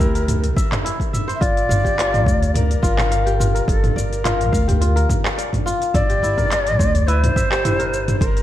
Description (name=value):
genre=organic downtempo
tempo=106 BPM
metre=4/4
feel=swing 53% on 16ths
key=G dorian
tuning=A4 = 441 Hz
part: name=breathy Native American-style cedar flute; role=melody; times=0.0-8.4 s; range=A4 to E5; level=-23 LUFS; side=left 1 dB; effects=ping-pong delay
part: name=kora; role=arpeggios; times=0.0-8.4 s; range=E4 to F5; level=-24 LUFS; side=left 2 dB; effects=digital delay
part: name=upright bass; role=bass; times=0.0-8.4 s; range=G1 to D2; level=-21 LUFS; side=equal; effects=sidechain pumping
part: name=electronic kick drum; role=drums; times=0.0-8.3 s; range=none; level=-21 LUFS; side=equal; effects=overdrive
part: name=organic electronic drum kit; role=drums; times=0.0-8.4 s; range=handclaps, hi-hat, shaker, toms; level=-23 LUFS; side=equal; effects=none
part: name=udu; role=percussion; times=2.3-7.1 s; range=none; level=-26 LUFS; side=right 1 dB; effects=none
room=light reverb, small room ambience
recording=dark, warm production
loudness=-16 LUFS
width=side -13 dB against mid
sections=0.0-8.4 A section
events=none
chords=0.0 C7; 1.4 Gm7; 5.9 C7/G